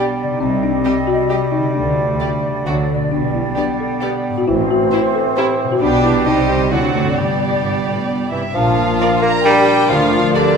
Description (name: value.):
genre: cinematic, playful, whimsical film cue.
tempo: 133 BPM.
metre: 3/4.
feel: straight.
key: G major.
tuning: A4 = 440 Hz.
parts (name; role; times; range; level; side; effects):
folk marimba with medium mallets; melody; 0.0-8.3 s; A3 to A4; -20 LUFS; left 4 dB; none.
warm chamber violin section; melody; 0.0-10.6 s; B4 to Bb5; -25 LUFS; left 2 dB; none.
dark clarinet; second line; 0.0-10.6 s; A3 to G4; -25 LUFS; right 1 dB; none.
flute section; second line; 0.0-8.3 s; C5 to Eb5; -23 LUFS; left 1 dB; none.
rich chamber violin section; second line; 0.0-10.4 s; E4 to D5; -25 LUFS; equal; none.
clear bassoon; accompaniment; 0.0-10.6 s; D3 to Bb3; -20 LUFS; right 3 dB; none.
rich chamber viola section; accompaniment; 0.0-10.6 s; G3 to Bb4; -24 LUFS; equal; none.
concert harp; arpeggios; 0.0-10.6 s; G2 to F5; -24 LUFS; left 5 dB; none.
dark symphonic cello section; bass; 0.4-10.3 s; D2 to D3; -25 LUFS; right 4 dB; none.
warm chamber double bass section; bass; 0.4-10.3 s; G1 to D2; -25 LUFS; right 4 dB; none.
dark French horn section; sustained chords; 8.5-10.6 s; D4 to Bb4; -21 LUFS; left 4 dB; none.
room: wet scoring stage reverb, RT60 1.9 s.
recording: minimal, uncompressed stereo recording.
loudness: -14 LUFS.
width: side -6 dB against mid.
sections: 0.0-8.6 A section; 8.6-10.6 B section.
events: none.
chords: 0.4 Cm; 1.8 Dsus4; 2.7 D; 3.1 G/B; 4.5 Am; 5.8 G/B; 6.3 Cm; 6.7 D7; 7.2 G; 8.6 Bb; 9.9 Bb/D.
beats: | 0.41 0.85 1.31 | 1.76 2.21 2.67 | 3.13 3.58 4.03 | 4.48 4.93 5.38 | 5.83 6.27 6.72 | 7.18 7.64 8.09 | 8.55 9.00 9.46 | 9.91 10.36.